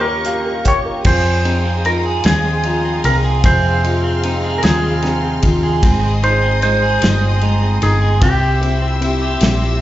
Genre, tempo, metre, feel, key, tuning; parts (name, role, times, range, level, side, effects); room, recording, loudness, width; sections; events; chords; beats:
six-eight pop ballad; 50 BPM (dotted quarters); 6/8; straight; F minor; A4 = 440 Hz
clean lap steel guitar; melody; 0.0-9.4 s; G4 to Eb5; -19 LUFS; equal; slapback echo
felt-muted upright piano; accompaniment; 0.0-9.8 s; C3 to G5; -22 LUFS; left 2 dB
warm studio string section; sustained chords; 0.0-9.8 s; G4 to F6; -25 LUFS; equal
electric guitar at the edge of break-up; arpeggios; 0.0-9.8 s; Bb3 to Ab4; -23 LUFS; right 4 dB; phaser, slapback echo
hollow-body short-scale fingered electric bass; bass; 0.0-9.8 s; G1 to F2; -17 LUFS; equal
natural country drum kit; drums; 0.2-9.6 s; crash cymbal, hi-hat, kick drum, ride cymbal, rim click, snare drum; -20 LUFS; equal
small room ambience; live gig heard through the venue's PA, club reverb, nothing above 7.6 kHz; -13 LUFS; side -14 dB against mid
0.0-1.1 A section; 1.1-9.8 B section
felt piano fill 0.0-1.1
0.0 Eb7; 1.1 Fm7; 5.8 Ab; 8.2 C
| 1.05 2.25 | 3.44 4.63 | 5.83 7.02 | 8.22 9.41